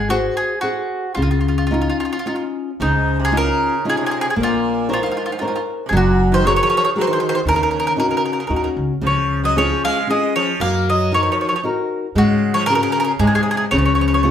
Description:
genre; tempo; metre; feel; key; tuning
italian folk, Italian serenade; 115 BPM; 3/4; rubato; Db major; A4 = 439 Hz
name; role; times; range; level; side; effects
bowl-back mandolin; melody; 0.0-14.3 s; Eb4 to F5; -19 LUFS; equal; none
flamenco guitar; accompaniment; 0.0-14.3 s; Db3 to Db5; -20 LUFS; left 3 dB; none
upright bass; bass; 0.0-14.3 s; Gb1 to Ab2; -21 LUFS; right 1 dB; none
sitar; second line; 2.8-14.3 s; Ab2 to Bb3; -26 LUFS; right 5 dB; none
room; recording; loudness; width
wet large studio reverb, RT60 0.9 s; band playing live in one room; -16 LUFS; side -9 dB against mid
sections
0.0-2.8 A section; 2.8-14.3 B section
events
none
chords
0.0 Ab7; 1.2 Dbadd9; 4.4 Bbmadd9; 5.9 Gbadd9; 7.5 Ebm7; 9.0 Db; 10.6 Gb6; 12.2 Ab7sus4; 13.2 Ab; 13.7 Db

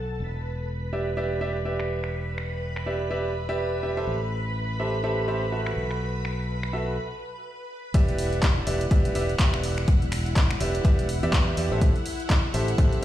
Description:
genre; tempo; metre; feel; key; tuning
piano house; 124 BPM; 4/4; swing 59% on 16ths; E minor; A4 = 440 Hz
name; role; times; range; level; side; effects
string machine, violins; sustained chords; 0.0-13.0 s; E4 to B5; -34 LUFS; equal; ensemble chorus, sidechain pumping
fingered electric bass; bass; 0.0-13.0 s; E1 to E2; -29 LUFS; equal; sidechain pumping, low-pass filter
bright concert grand piano; riff; 0.9-13.0 s; F#4 to E5; -29 LUFS; right 2 dB; sidechain pumping, tape echo
punchy analog drum machine; drums; 1.8-13.0 s; finger snaps, handclaps, hi-hat; -32 LUFS; equal; low-pass filter on snare, low-pass filter on hats
electronic kick drum; drums; 7.9-12.9 s; none; -21 LUFS; equal; none
room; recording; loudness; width
light reverb; played on a big sound system in a bare room, stone room reverb; -23 LUFS; side -13 dB against mid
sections
0.0-7.9 A section; 7.9-13.0 B section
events
break 7.0-7.9; drop 7.9-13.0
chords
0.2 Em7; 4.1 Am7; 5.8 B7sus4; 7.9 Em7; 11.8 Am7

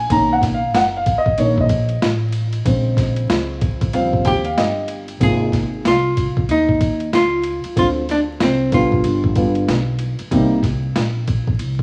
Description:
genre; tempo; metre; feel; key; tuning
hip hop, jazz-hop; 94 BPM; 4/4; swing 62% on 16ths; Ab major; A4 = 442 Hz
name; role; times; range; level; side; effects
dark grand piano; accompaniment; 0.0-10.6 s; C3 to A#5; -21 LUFS; equal; none
upright bass; bass; 0.0-11.8 s; F#1 to Eb2; -25 LUFS; equal; none
boom bap sampler-style drum kit; drums; 0.1-11.8 s; hi-hat, kick drum, ride cymbal, snare drum; -24 LUFS; equal; none
archtop guitar, miked and amplified; melody; 4.3-9.3 s; C4 to Ab4; -21 LUFS; equal; none
room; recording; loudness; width
light reverb; rough home demo mix, vinyl crackle; -18 LUFS; mono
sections
0.0-5.2 A section; 5.2-11.8 B section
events
grand piano solo 0.0-5.2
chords
0.1 Bmaj7; 2.7 Bbm7; 3.9 Eb13; 5.2 Ab69; 7.8 Dm7b5; 9.0 G7; 10.3 Cm7

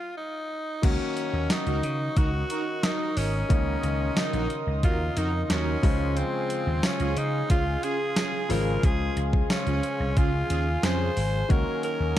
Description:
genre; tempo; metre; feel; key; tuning
1980s-style pop; 90 BPM; 4/4; straight; unclear; A4 = 441 Hz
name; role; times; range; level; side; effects
raspy tenor saxophone; melody; 0.0-12.2 s; C4 to C5; -30 LUFS; equal; ping-pong delay
warm concert grand piano; accompaniment; 0.8-12.2 s; Db3 to C5; -33 LUFS; left 3 dB; none
warm analog pad; sustained chords; 0.8-12.2 s; Ab4 to Eb6; -36 LUFS; equal; chorus
vintage slap bass; bass; 0.8-12.1 s; Ab1 to Db3; -28 LUFS; equal; none
clean 12-bit digital drum machine; drums; 0.8-12.2 s; crash cymbal, hi-hat, kick drum, snare drum, tambourine; -26 LUFS; equal; none
analog synth brass; stabs; 1.7-11.1 s; Db4 to Bb4; -34 LUFS; right 2 dB; chorus, ping-pong delay
room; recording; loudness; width
light reverb; dark, warm production; -23 LUFS; side -12 dB against mid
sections
0.8-12.2 A section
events
stop 0.0-0.8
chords
0.0 N.C.; 0.8 Ebm7; 5.8 Dbmaj7; 11.5 Ebm7

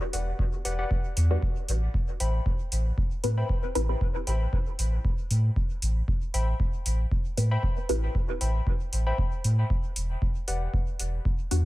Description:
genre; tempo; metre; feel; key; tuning
dub techno; 116 BPM; 4/4; swing 54% on 16ths; unclear; A4 = 440 Hz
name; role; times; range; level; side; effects
warbly dusty pluck; riff; 0.1-10.6 s; G4 to B5; -37 LUFS; left 3 dB; chorus, sidechain pumping, dub echo
soft dub sub bass; bass; 0.1-11.7 s; E1 to A2; -25 LUFS; equal; tube saturation, sidechain pumping
electronic hi-hat; drums; 0.1-11.6 s; none; -35 LUFS; right 1 dB; none
electronic kick drum; drums; 0.4-11.4 s; none; -28 LUFS; equal; none
filtered dub chord stab; stabs; 1.3-4.1, 7.4-8.0, 11.5-11.7 s; G3 to B4; -34 LUFS; left 1 dB; phaser, sidechain pumping, dub echo
room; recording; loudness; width
little or no reverb; none; -25 LUFS; side -17 dB against mid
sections
0.0-11.7 A section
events
filter sweep on synth stab 0.0-11.7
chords
0.0 Em7; 1.4 Am7; 9.7 Em7

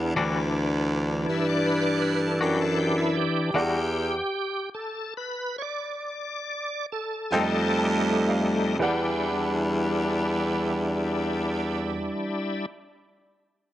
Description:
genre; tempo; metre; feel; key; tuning
slow blues; 39-54 BPM (dotted quarters); 12/8; straight; E minor; A4 = 440 Hz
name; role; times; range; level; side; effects
clear upright piano; accompaniment; 0.0-12.2 s; G4 to A5; -32 LUFS; right 4 dB; none
bright tonewheel organ; sustained chords; 0.0-12.7 s; E3 to E5; -27 LUFS; equal; overdrive, chorus vibrato, slow rotary speaker
bright baritone saxophone; bass; 0.0-12.1 s; D2 to G2; -26 LUFS; equal; none
twangy electric guitar; accompaniment; 0.2-12.3 s; E3 to A4; -31 LUFS; left 3 dB; tremolo
room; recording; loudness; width
light reverb, small room ambience; none; -24 LUFS; side -13 dB against mid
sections
0.0-8.8 A section; 8.8-13.7 B section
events
tonewheel organ solo 0.0-8.8; slowing down 2.0-8.8; stop 3.6-7.3; upright piano fill 7.3-8.8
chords
0.0 Em9; 7.3 F7; 8.8 Em9

